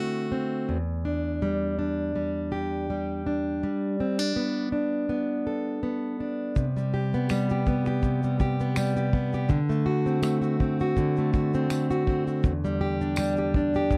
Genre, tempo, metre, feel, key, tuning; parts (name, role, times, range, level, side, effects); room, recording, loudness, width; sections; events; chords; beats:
acoustic pop; 82 BPM; 4/4; swing 55% on 16ths; A4 = 441 Hz
fingerpicked plugged-in steel-string acoustic guitar; accompaniment; 0.0-14.0 s; E2 to A4; -27 LUFS; equal
soft brush drum kit; drums; 6.6-14.0 s; finger snaps, kick drum, shaker; -29 LUFS; equal
tambourine; percussion; 7.3-13.4 s; -44 LUFS; equal
little or no reverb; dry, close 1970s-style studio recording; -27 LUFS; mono
0.0-6.6 A section; 6.6-14.0 B section
0.0 D7; 0.7 Em7; 3.6 Gadd9; 6.6 C5; 9.5 D7; 12.4 Em7
| 0.69 1.42 2.16 2.89 | 3.63 4.36 5.10 5.83 | 6.57 7.30 8.04 8.77 | 9.50 10.24 10.97 11.71 | 12.44 13.17 13.91